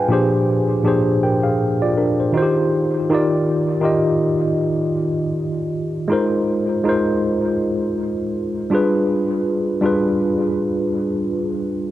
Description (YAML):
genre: hip hop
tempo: 80 BPM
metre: 4/4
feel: swing 56% on 16ths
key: Eb major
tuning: A4 = 441 Hz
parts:
  - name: tine electric piano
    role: solo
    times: 0.0-11.9 s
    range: Bb2 to Ab5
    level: -17 LUFS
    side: equal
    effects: medium stereo tremolo, cassette tape, low-pass filter, analog delay
room: light reverb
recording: cassette tape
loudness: -17 LUFS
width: side -14 dB against mid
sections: 0.0-3.1 A section; 3.1-11.9 B section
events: none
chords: 0.1 Bb13; 2.3 Eb69; 3.1 Ebmaj9; 6.1 Ab69; 8.7 G7b9